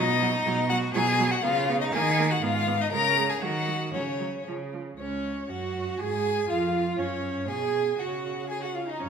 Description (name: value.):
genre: quick classical-period movement for string quartet.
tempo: 120 BPM.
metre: 2/4.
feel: rubato.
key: F# major.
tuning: A4 = 440 Hz.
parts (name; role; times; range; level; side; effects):
rich violin; melody; 0.0-9.1 s; C#5 to A#5; -29 LUFS; left 7 dB; none.
clear violin; second line; 0.0-9.1 s; C#4 to A#4; -31 LUFS; left 2 dB; none.
clear viola; accompaniment; 0.0-9.1 s; E#3 to G#4; -31 LUFS; right 5 dB; none.
clear cello; bass; 0.0-9.1 s; C#2 to D#3; -30 LUFS; right 4 dB; none.
room: wet recital hall reverb, RT60 1.9 s.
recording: minimal, uncompressed stereo recording.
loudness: -24 LUFS.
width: side -7 dB against mid.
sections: 0.0-5.0 A section; 5.0-9.1 B section.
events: none.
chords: 0.0 B; 1.4 C#7; 1.9 D#5; 2.4 G#m; 2.9 C#5; 3.4 D#m; 3.9 F#5/C#; 4.5 C#; 5.0 F#5/C#; 6.0 Fm; 7.0 F#5; 7.5 G#m/B; 8.0 F#5/C#.